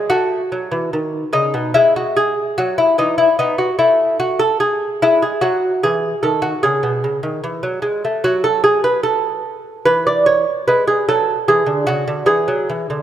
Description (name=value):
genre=classical, baroque-style dance for lute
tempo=74 BPM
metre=4/4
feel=rubato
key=E major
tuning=A4 = 440 Hz
part: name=lute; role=solo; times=0.0-13.0 s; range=B2 to D5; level=-14 LUFS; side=equal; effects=none
room=moderate concert hall reverb, RT60 2.4 s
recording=none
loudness=-14 LUFS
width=side -10 dB against mid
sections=0.0-13.0 A section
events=none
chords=0.0 B7; 1.8 E/G#; 3.4 F#m11/A; 5.0 E; 8.2 N.C.; 9.9 E; 11.5 E7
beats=0.10 0.93 | 1.75 2.57 3.38 4.20 | 5.02 5.84 6.64 7.43 | 8.23 9.04 9.86 10.67 | 11.48 12.28